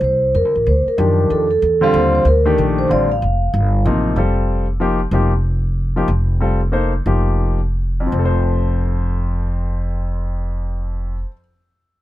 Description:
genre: modal jazz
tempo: 159-188 BPM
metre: 3/4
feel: swing 63% on 8ths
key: F mixolydian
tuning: A4 = 440 Hz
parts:
  - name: vibraphone with soft mallets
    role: melody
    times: 0.0-3.8 s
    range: A4 to F5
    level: -16 LUFS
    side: right 1 dB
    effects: none
  - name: upright bass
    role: bass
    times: 0.0-11.2 s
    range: F1 to Gb2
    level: -18 LUFS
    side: equal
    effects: none
  - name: warm baby grand piano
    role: accompaniment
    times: 1.0-11.4 s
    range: F2 to C5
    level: -20 LUFS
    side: left 2 dB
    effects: none
room: little or no reverb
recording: close, detailed microphones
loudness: -15 LUFS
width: side -15 dB against mid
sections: 0.0-4.2 A section; 4.2-8.1 B section; 8.1-10.4 C section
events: slowing down 6.1-8.1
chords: 0.3 Dm; 4.2 F9; 8.1 F

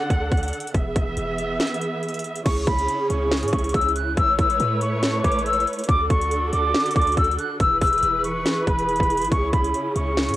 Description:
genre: hip hop, trap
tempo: 140 BPM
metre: 4/4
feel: half-time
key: C# phrygian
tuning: A4 = 441 Hz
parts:
  - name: dark symphonic string section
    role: sustained chords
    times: 0.0-10.4 s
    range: C#3 to F#5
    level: -26 LUFS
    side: right 1 dB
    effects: none
  - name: warm 808-style bass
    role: bass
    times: 0.1-10.4 s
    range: E1 to A2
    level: -27 LUFS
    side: equal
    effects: none
  - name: trap drum kit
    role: drums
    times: 0.1-10.4 s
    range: crash cymbal, hi-hat, kick drum, snare drum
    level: -24 LUFS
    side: equal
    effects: overdrive, cassette tape
  - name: mellow concert flute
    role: melody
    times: 2.5-10.4 s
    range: B5 to F#6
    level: -22 LUFS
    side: left 1 dB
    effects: cassette tape, analog delay
room: light reverb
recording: home recording on cassette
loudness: -19 LUFS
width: side -15 dB against mid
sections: 0.0-2.5 A section; 2.5-10.4 B section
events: kick muted 1.6-2.5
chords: 0.0 D; 0.7 E; 2.5 C#m; 4.2 Aadd9; 5.9 D; 7.6 E; 9.3 C#m

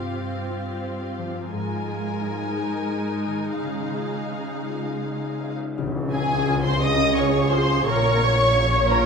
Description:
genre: cinematic, emotional film score for orchestra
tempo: 57 BPM (dotted quarters)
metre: 6/8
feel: rubato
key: unclear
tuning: A4 = 440 Hz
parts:
  - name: muted studio violin section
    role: second line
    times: 0.0-9.1 s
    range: G4 to Ab5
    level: -27 LUFS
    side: left 1 dB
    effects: none
  - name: muted studio viola section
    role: accompaniment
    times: 0.0-9.1 s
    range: Ab3 to Db5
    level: -28 LUFS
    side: right 2 dB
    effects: none
  - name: concert harp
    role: arpeggios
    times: 0.0-9.1 s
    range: G2 to F5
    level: -29 LUFS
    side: left 6 dB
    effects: none
  - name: muted studio cello section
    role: bass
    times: 0.0-9.1 s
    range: G2 to Db3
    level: -28 LUFS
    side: right 4 dB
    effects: none
  - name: cymbal swell and tam-tam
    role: percussion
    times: 1.5-8.5 s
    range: none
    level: -33 LUFS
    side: equal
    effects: none
  - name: muted studio double bass section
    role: bass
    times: 5.8-9.1 s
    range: Bb1 to Db2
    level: -28 LUFS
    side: right 3 dB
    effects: none
  - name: muted studio violin section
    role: melody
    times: 6.1-9.1 s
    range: Ab5 to Eb6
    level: -25 LUFS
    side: left 2 dB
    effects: none
room: moderate scoring stage reverb, RT60 1.8 s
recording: none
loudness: -21 LUFS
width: side -5 dB against mid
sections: 0.0-5.8 A section; 5.8-9.1 B section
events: band accent 5.8-6.5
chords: 0.0 Csus4/G; 1.5 Absus2; 3.6 Dbadd9; 5.8 Db; 7.9 Bbm

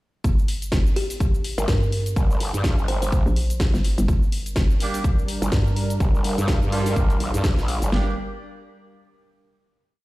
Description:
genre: bass house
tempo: 125 BPM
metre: 4/4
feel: swing 57% on 16ths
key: G minor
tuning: A4 = 440 Hz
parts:
  - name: hollow knocking FM bass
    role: bass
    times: 0.2-8.1 s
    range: G1 to G2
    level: -23 LUFS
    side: equal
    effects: overdrive, sidechain pumping
  - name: house drum kit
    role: drums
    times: 0.2-8.1 s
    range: kick drum, snare drum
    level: -21 LUFS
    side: equal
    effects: none
  - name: house drum kit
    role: drums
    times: 0.2-7.9 s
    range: hi-hat, shaker, snare drum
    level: -31 LUFS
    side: left 1 dB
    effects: none
  - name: kalimba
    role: melody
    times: 1.0-3.1 s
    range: G4 to C5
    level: -32 LUFS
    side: equal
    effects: ping-pong delay
  - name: growl bass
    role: bass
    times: 1.6-7.9 s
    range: G1 to G2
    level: -24 LUFS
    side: equal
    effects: chorus, overdrive, sidechain pumping
  - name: sweeping resonant pad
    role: sustained chords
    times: 4.1-8.1 s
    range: G3 to Bb4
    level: -30 LUFS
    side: right 1 dB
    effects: chorus, sidechain pumping
  - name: mellow horn section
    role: stabs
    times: 4.8-8.1 s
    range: F3 to Bb4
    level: -32 LUFS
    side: right 3 dB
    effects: sidechain pumping, ping-pong delay
room: little or no reverb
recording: played on a big sound system in a bare room, large studio reverb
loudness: -19 LUFS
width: side -19 dB against mid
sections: 0.2-7.9 drop; 7.9-9.8 final chord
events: drop 0.2-7.9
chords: 0.2 Gm

